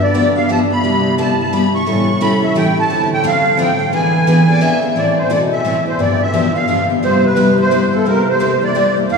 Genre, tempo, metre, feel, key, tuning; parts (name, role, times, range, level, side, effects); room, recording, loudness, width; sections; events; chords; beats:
acoustic string swing (jazz manouche); 174 BPM; 3/4; swing 62% on 8ths; A minor; A4 = 437 Hz
musette accordion; melody; 0.0-9.2 s; A4 to C#6; -16 LUFS; right 1 dB
breathy bass clarinet; bass; 0.0-9.2 s; F2 to E3; -19 LUFS; right 1 dB
picked steel-string acoustic guitar; accompaniment; 0.1-9.2 s; C3 to A4; -17 LUFS; left 3 dB
picked steel-string acoustic guitar; accompaniment; 0.1-9.2 s; C3 to B4; -24 LUFS; right 2 dB
warm violin; second line; 4.3-5.0 s; B4 to E5; -26 LUFS; equal
wet cathedral reverb, RT60 6.5 s; recorded in a church or concert hall, small room reverb; -12 LUFS; side -5 dB against mid
0.0-5.0 A section; 5.0-9.2 B section
0.0 G7; 0.8 Cmaj7; 1.9 A7; 2.9 Dm7; 3.9 E7; 5.0 Am; 6.0 G7; 7.0 Cmaj7; 8.1 C7
0.14 0.48 | 0.83 1.17 1.52 | 1.86 2.20 2.55 | 2.89 3.24 3.58 | 3.92 4.27 4.61 | 4.96 5.30 5.64 | 5.99 6.33 6.68 | 7.02 7.37 7.71 | 8.05 8.40 8.74 | 9.09